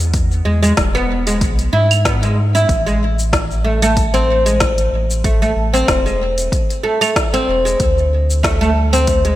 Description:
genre	organic downtempo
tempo	94 BPM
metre	4/4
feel	swing 55% on 16ths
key	A harmonic minor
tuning	A4 = 440 Hz
part	warm sub bass	bass	0.0-9.4 s	E1 to G#2	-17 LUFS	equal	none
part	organic electronic drum kit	drums	0.0-9.4 s	claves, hi-hat, shaker, snare drum	-21 LUFS	equal	overdrive
part	electronic kick drum	drums	0.1-9.2 s	none	-19 LUFS	equal	overdrive
part	oud	arpeggios	0.5-9.4 s	G#3 to E4	-17 LUFS	equal	digital delay
room	moderate plate reverb, RT60 2.7 s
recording	bright 1980s-style digital production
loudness	-13 LUFS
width	side -14 dB against mid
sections	0.0-9.4 A section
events	none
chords	0.0 E; 2.7 Am; 7.8 D5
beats	| 0.14 0.78 1.42 2.05 | 2.69 3.33 3.97 4.61 | 5.25 5.88 6.52 7.16 | 7.80 8.44 9.07

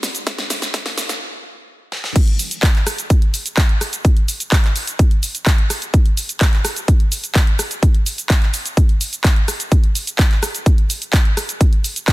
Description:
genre	EDM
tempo	127 BPM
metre	4/4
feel	straight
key	none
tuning	none
part	big-room dance drum kit	drums	0.0-12.1 s	cabasa, crash cymbal, handclaps, hi-hat, rim click, snare drum	-21 LUFS	equal	none
part	electronic kick drum	drums	0.3-12.1 s	none	-13 LUFS	equal	high-pass filter on kick
room	little or no reverb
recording	dense, heavily limited modern master, high-pass filter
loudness	-14 LUFS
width	side -19 dB against mid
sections	0.0-2.2 A section; 2.2-12.1 B section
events	build-up 0.0-2.2; drum fill 0.0-1.2, 1.9; stop 1.2-2.2; drop 2.2-12.1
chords	none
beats	| 0.27 0.74 1.21 1.69 | 2.16 2.63 3.10 3.58 | 4.05 4.52 4.99 5.46 | 5.94 6.41 6.88 7.35 | 7.83 8.30 8.77 9.24 | 9.72 10.19 10.66 11.13 | 11.61 12.08

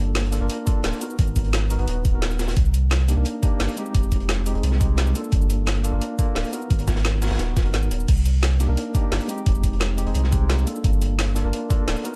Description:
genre	liquid drum and bass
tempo	174 BPM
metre	4/4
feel	straight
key	C minor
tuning	A4 = 440 Hz
part	tine electric piano	accompaniment	0.0-12.2 s	Ab3 to Cb5	-31 LUFS	equal	digital delay
part	warm sub bass	bass	0.0-12.0 s	D1 to C2	-24 LUFS	equal	none
part	crunchy breakbeat drum kit	drums	0.2-12.1 s	hi-hat, snare drum	-37 LUFS	equal	high-pass filter on hats, studio reverb, high-pass filter on snare, high-pass filter on room
part	drum and bass drum kit	drums	0.2-12.1 s	cabasa, crash cymbal, hi-hat, snare drum	-31 LUFS	equal	overdrive, studio reverb
part	electronic kick drum	drums	0.7-11.8 s	none	-23 LUFS	equal	overdrive, studio reverb
room	digital ambience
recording	dark, warm production, lossy compression artefacts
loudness	-22 LUFS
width	mono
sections	0.0-12.2 A section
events	kick drops out 7.7-8.1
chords	0.0 Gm7; 1.2 Abm7; 2.6 Cm7; 3.9 Fm7; 5.2 Gm7; 6.7 Abm7; 8.1 Cm7; 9.5 Fm7; 10.7 Gm7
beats	0.15 0.50 0.84 | 1.19 1.53 1.88 2.22 | 2.57 2.91 3.26 3.60 | 3.95 4.29 4.64 4.98 | 5.33 5.67 6.02 6.36 | 6.71 7.05 7.39 7.74 | 8.09 8.43 8.77 9.12 | 9.46 9.81 10.15 10.50 | 10.84 11.19 11.53 11.88

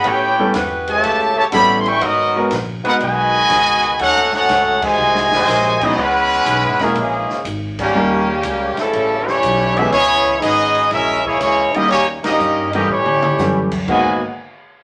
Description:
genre	jazz, big band swing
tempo	121 BPM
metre	4/4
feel	swing 68% on 8ths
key	G# minor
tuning	A4 = 440 Hz
part	clear trumpet section	melody	0.0-14.2 s	G3 to C#6	-18 LUFS	equal	none
part	muted trombone section	second line	0.0-14.2 s	G#2 to G4	-23 LUFS	equal	none
part	dark saxophone section	sustained chords	0.0-5.7 s	F#3 to B4	-28 LUFS	equal	none
part	upright bass	bass	0.0-14.2 s	E1 to A2	-30 LUFS	equal	none
part	open jazz drum kit	drums	0.0-14.0 s	china cymbal, crash cymbal, hi-hat, kick drum, ride cymbal, snare drum, toms	-31 LUFS	equal	none
part	clear concert grand piano	accompaniment	0.4-14.2 s	D#3 to B4	-22 LUFS	equal	none
room	wet studio reverb, RT60 0.7 s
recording	none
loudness	-16 LUFS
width	mono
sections	0.0-6.0 A section; 6.0-13.9 B section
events	band accent 4.7, 7.7, 12.2; drum fill 5.0-5.5, 12.9-13.4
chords	0.0 A9; 2.0 G#m9; 4.0 D#m7b5; 5.0 G#7; 6.0 C#m7; 7.0 A#m7b5; 7.9 D#7; 8.9 A7; 9.9 C#m7; 10.9 A#m7b5; 11.9 D#7; 12.9 A7; 13.9 G#m9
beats	| 0.04 0.54 1.03 1.53 | 2.02 2.51 3.01 3.50 | 4.00 4.49 4.98 5.48 | 5.97 6.46 6.96 7.45 | 7.95 8.44 8.94 9.43 | 9.93 10.42 10.91 11.41 | 11.90 12.40 12.89 13.39 | 13.88

